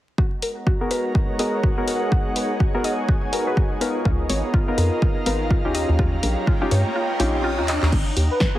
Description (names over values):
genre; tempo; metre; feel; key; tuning
deep house; 124 BPM; 4/4; swing 60% on 16ths; G# dorian; A4 = 440 Hz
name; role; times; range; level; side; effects
airy breathy pad; sustained chords; 0.4-8.6 s; G#3 to A#5; -29 LUFS; equal; chorus, vintage 12-bit sampler grit, sidechain pumping
mallet-like synth pluck; arpeggios; 0.2-7.8 s; E#4 to D#5; -31 LUFS; left 1 dB; chorus, phaser, sidechain pumping, dub echo
electronic kick drum; drums; 0.2-8.5 s; none; -20 LUFS; equal; none
ethereal airy pad; texture; 0.7-8.6 s; D#4 to A#5; -31 LUFS; right 1 dB; ensemble chorus, built-in reverb, sidechain pumping
punchy analog drum machine; drums; 0.4-8.5 s; crash cymbal, handclaps, hi-hat, snare drum; -28 LUFS; left 1 dB; none
warm analog keys; stabs; 0.8-8.6 s; A#3 to B4; -26 LUFS; left 1 dB; chorus, sidechain pumping, low-pass filter, digital delay
hollow knocking FM bass; bass; 4.1-8.3 s; G#1 to G2; -22 LUFS; equal; sidechain pumping
riser; sound effects; 5.6-7.9 s; none; -32 LUFS; left 1 dB; none
airy dreamy lead; melody; 8.3-8.5 s; B4; -24 LUFS; left 1 dB; chorus
room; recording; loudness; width
light reverb, digital ambience; heavily compressed radio sound, vinyl crackle; -19 LUFS; side -14 dB against mid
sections
0.2-7.9 A section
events
riser 5.6-7.9; kick drops out 7.0-7.9; drum fill 7.7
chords
0.2 G#m9; 3.8 C#13; 5.7 D#9; 7.9 G#m9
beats
| 0.18 0.67 1.15 1.63 | 2.12 2.60 3.09 3.57 | 4.05 4.54 5.02 5.50 | 5.99 6.47 6.96 7.44 | 7.92 8.41